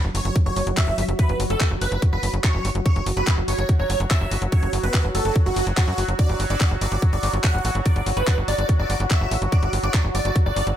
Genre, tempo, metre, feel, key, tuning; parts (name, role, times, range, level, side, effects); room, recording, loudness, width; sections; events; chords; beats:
psychedelic trance; 144 BPM; 4/4; straight; A4 = 440 Hz
dense compressed supersaw; melody; 0.0-10.7 s; F#4 to F#5; -27 LUFS; right 1 dB; phaser, sidechain pumping, digital delay
bubbling stepped-filter texture; sustained chords; 0.1-10.8 s; F#3 to F#4; -29 LUFS; right 1 dB; chorus, built-in reverb, sidechain pumping
tight sequencer bass; bass; 0.0-10.7 s; F#1 to F#2; -24 LUFS; equal
garage drum kit; drums; 0.1-10.8 s; handclaps, hi-hat; -28 LUFS; left 1 dB; small room ambience
electronic kick drum; drums; 0.4-10.4 s; -19 LUFS; equal; small room ambience
digital ambience; -19 LUFS; side -11 dB against mid
0.0-10.8 A section
0.0 F#sus4; 6.2 Gmaj7(no3)
0.36 0.77 | 1.19 1.61 2.02 2.44 | 2.86 3.27 3.69 4.11 | 4.52 4.94 5.36 5.77 | 6.19 6.61 7.02 7.44 | 7.86 8.27 8.69 9.11 | 9.52 9.94 10.36